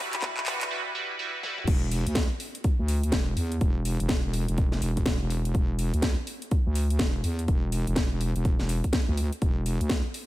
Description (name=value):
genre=bass house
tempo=124 BPM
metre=4/4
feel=swing 62% on 16ths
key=E minor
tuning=A4 = 439 Hz
part: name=band-passed chord stab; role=stabs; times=0.0-1.7 s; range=G3 to B4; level=-31 LUFS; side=right 1 dB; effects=phaser, analog chorus, sidechain pumping, ping-pong delay
part: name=house drum kit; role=drums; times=0.1-10.3 s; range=crash cymbal, handclaps, hi-hat, snare drum, toms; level=-32 LUFS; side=equal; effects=studio reverb
part: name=electronic kick drum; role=drums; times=0.2-10.0 s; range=none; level=-25 LUFS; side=equal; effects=studio reverb
part: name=wobble bass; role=bass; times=1.7-10.0 s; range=E1 to E2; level=-27 LUFS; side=equal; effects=chorus, tube saturation, sidechain pumping
room=little or no reverb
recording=high-pass filter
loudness=-24 LUFS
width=side -16 dB against mid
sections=0.0-1.7 A section; 1.7-10.3 B section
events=build-up 0.0-1.7; drum fill 0.0-0.7, 1.4; break 0.7-1.7; drop 1.7-10.3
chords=0.0 Emadd9; 1.7 N.C.